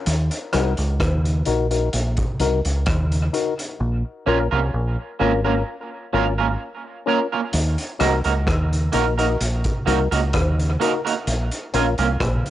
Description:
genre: dub reggae.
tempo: 64 BPM.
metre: 4/4.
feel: straight.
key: Eb dorian.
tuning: A4 = 441 Hz.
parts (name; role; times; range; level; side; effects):
deep dub fingered electric bass; bass; 0.1-12.4 s; Ab1 to Eb2; -21 LUFS; equal; none.
vintage drum kit; drums; 0.1-12.5 s; hi-hat, kick drum, rim click; -25 LUFS; equal; cassette tape.
percussive organ stab; stabs; 0.5-11.9 s; Db4 to Bb4; -26 LUFS; left 6 dB; chorus, cassette tape, dub echo.
electric guitar at the edge of break-up; accompaniment; 4.3-12.1 s; Bb3 to Bb4; -23 LUFS; right 7 dB; lush chorus, cassette tape, dub echo, plate reverb.
room: light reverb.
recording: home recording on cassette, nothing above 10.4 kHz.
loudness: -19 LUFS.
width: side -13 dB against mid.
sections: 0.0-12.5 A section.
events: break 0.0-3.8; part muted 3.8-7.5.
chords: 0.1 Ebm; 3.8 Bbm; 7.5 Ebm; 11.3 Bbm.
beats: | 0.07 1.00 1.93 2.87 | 3.80 4.73 5.67 6.60 | 7.53 8.47 9.40 10.33 | 11.27 12.20.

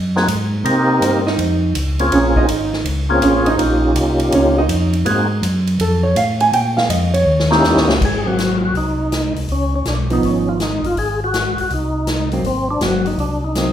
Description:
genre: soul jazz organ trio.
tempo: 163 BPM.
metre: 4/4.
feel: swing 66% on 8ths.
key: Ab mixolydian.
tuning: A4 = 440 Hz.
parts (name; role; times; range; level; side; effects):
hollow-body jazz guitar; accompaniment; 0.0-13.7 s; F3 to Ab5; -18 LUFS; right 2 dB; none.
mellow tonewheel organ; bass; 0.0-13.7 s; G1 to C3; -19 LUFS; equal; chorus vibrato, slow rotary speaker.
percussive tonewheel organ; melody; 0.2-5.3, 7.5-13.7 s; Bb3 to Bb4; -18 LUFS; equal; slow rotary speaker, overdrive, chorus vibrato.
swinging big-band drum kit; drums; 0.2-13.7 s; crash cymbal, hi-hat, kick drum, ride cymbal, snare drum; -24 LUFS; left 1 dB; none.
room: wet recital hall reverb, RT60 1.3 s.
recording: recorded in a church or concert hall.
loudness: -14 LUFS.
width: side -10 dB against mid.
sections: 0.0-8.0 A section; 8.0-13.7 B section.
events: hollow-body jazz guitar solo 0.0-8.0; drum fill 7.3-8.0.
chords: 0.0 Ab9; 0.7 Cm7; 1.4 Fm7; 2.1 Bbm7; 3.6 Eb9; 5.1 Ab9; 5.8 Faug; 6.5 Bb5; 7.3 Eb7b9; 8.0 Ab9; 9.5 Db9; 11.0 Ab9.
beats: 0.28 | 0.65 1.02 1.39 1.75 | 2.12 2.48 2.85 3.22 | 3.59 3.96 4.32 4.69 | 5.06 5.43 5.79 6.16 | 6.53 6.90 7.27 7.64 | 8.01 8.38 8.75 9.12 | 9.48 9.86 10.22 10.60 | 10.96 11.34 11.71 12.07 | 12.45 12.81 13.19 13.55.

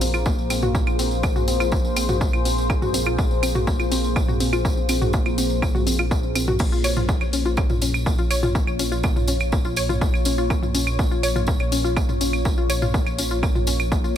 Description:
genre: melodic techno.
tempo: 123 BPM.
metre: 4/4.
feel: straight.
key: Bb minor.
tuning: A4 = 440 Hz.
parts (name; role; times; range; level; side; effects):
deep dark ambient pad; sustained chords; 0.0-14.2 s; Bb3 to Db5; -28 LUFS; left 1 dB; chorus, built-in reverb, sidechain pumping.
warbly dusty pluck; arpeggios; 0.0-14.1 s; Bb3 to Db5; -27 LUFS; left 2 dB; chorus, sidechain pumping, ping-pong delay.
dark detuned saw bass; bass; 0.0-14.2 s; Bb1; -26 LUFS; equal; sidechain pumping.
punchy analog drum machine; drums; 0.0-13.9 s; claves, crash cymbal, hi-hat, toms; -28 LUFS; right 1 dB; overdrive, sidechain pumping on perc, studio reverb, sidechain pumping on hats, sidechain pumping on toms, sidechain pumping on cymbals.
tambourine; percussion; 0.0-14.1 s; none; -32 LUFS; right 2 dB; none.
electronic kick drum; drums; 0.3-14.0 s; none; -23 LUFS; equal; studio reverb.
room: digital ambience.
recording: none.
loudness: -19 LUFS.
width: side -10 dB against mid.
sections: 0.0-14.2 A section.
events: none.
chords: 0.0 Ab/Bb; 6.6 Bbm.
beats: 0.26 | 0.75 1.23 1.72 2.21 | 2.70 3.19 3.67 4.16 | 4.65 5.14 5.62 6.11 | 6.60 7.09 7.58 8.06 | 8.55 9.04 9.53 10.01 | 10.50 10.99 11.48 11.96 | 12.45 12.94 13.43 13.92.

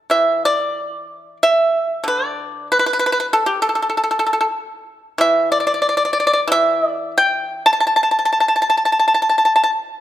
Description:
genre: chinese traditional, Chinese solo plucked strings.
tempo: 94 BPM.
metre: 4/4.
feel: uneven beats, rubato.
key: unclear.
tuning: A4 = 440 Hz.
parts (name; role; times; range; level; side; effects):
pipa; solo; 0.1-9.7 s; D3 to A5; -15 LUFS; equal; none.
room: moderate recital hall reverb, RT60 1.8 s.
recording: none.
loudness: -15 LUFS.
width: side -12 dB against mid.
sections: 0.1-10.0 A section.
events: none.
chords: none.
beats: | 0.11 0.77 1.40 2.05 | 2.69 3.31 3.92 4.55 | 5.19 5.84 6.49 7.14 | 7.79 8.45 9.12.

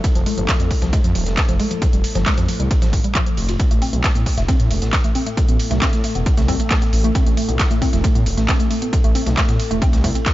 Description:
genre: driving peak-time techno.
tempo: 135 BPM.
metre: 4/4.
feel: straight.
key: A harmonic minor.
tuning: A4 = 445 Hz.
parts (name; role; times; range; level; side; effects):
analog drone; drone; 0.0-10.3 s; A2 to A3; -29 LUFS; left 2 dB; chorus, sidechain pumping.
breakbeat sampler-style drum kit; drums; 0.0-10.3 s; ride cymbal, snare drum; -33 LUFS; right 2 dB; high-pass filter on snare, high-pass filter on cymbals.
electronic kick drum; drums; 0.0-10.3 s; none; -17 LUFS; equal; none.
techno drum kit; drums; 0.0-10.3 s; handclaps, hi-hat; -25 LUFS; right 1 dB; none.
woody wave-folded pluck; riff; 0.2-10.2 s; F3 to F4; -24 LUFS; equal; tube saturation, ensemble chorus, sidechain pumping, dub echo.
detuned saw bass; bass; 0.2-10.1 s; D#1 to A2; -21 LUFS; equal; sidechain pumping.
room: little or no reverb.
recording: nothing above 7.5 kHz.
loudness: -15 LUFS.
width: side -16 dB against mid.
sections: 0.0-10.3 A section.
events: none.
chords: 0.0 Fm; 3.6 Am.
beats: | 0.04 0.48 0.93 1.37 | 1.82 2.26 2.71 3.15 | 3.60 4.04 4.48 4.93 | 5.37 5.82 6.26 6.71 | 7.15 7.59 8.04 8.48 | 8.93 9.37 9.82 10.26.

